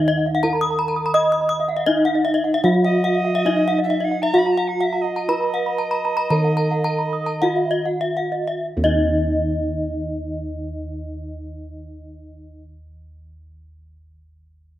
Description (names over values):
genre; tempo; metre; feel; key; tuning
Balinese gamelan; 47-85 BPM; 4/4; straight; Eb pelog; A4 = 441 Hz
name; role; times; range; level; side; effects
gamelan-type bronze metallophone; melody; 0.0-12.6 s; Eb4 to Eb5; -23 LUFS; right 1 dB; none
alto recorder; second line; 0.0-7.8 s; Eb5 to Cb6-44c; -28 LUFS; right 3 dB; none
gamelan-type bronze metallophone; arpeggios; 0.0-12.6 s; Eb5 to Eb6; -29 LUFS; right 7 dB; none
gamelan-type bossed gongs; bass; 0.0-12.6 s; Eb2 to Eb5; -24 LUFS; equal; none
gamelan-type bronze metallophone; arpeggios; 0.1-12.6 s; Eb5 to Eb6; -23 LUFS; left 3 dB; none
room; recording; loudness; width
light reverb, studio ambience; rough home demo mix; -18 LUFS; side -13 dB against mid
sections
0.0-8.7 A section; 8.7-13.8 B section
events
slowing down 1.1-8.7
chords
none